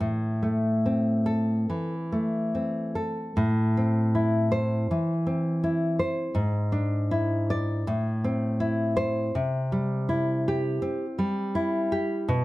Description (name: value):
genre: romantic piece for solo classical guitar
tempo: 81 BPM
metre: 4/4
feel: uneven beats, rubato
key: A minor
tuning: A4 = 443 Hz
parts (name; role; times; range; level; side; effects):
- nylon-string guitar; solo; 0.0-12.4 s; G#2 to D5; -24 LUFS; equal; none
room: light reverb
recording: close, detailed microphones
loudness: -24 LUFS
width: side -18 dB against mid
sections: 0.0-3.4 A section; 3.4-12.4 A section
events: none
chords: 0.0 Am; 6.4 E7/G#; 7.9 Am; 9.3 C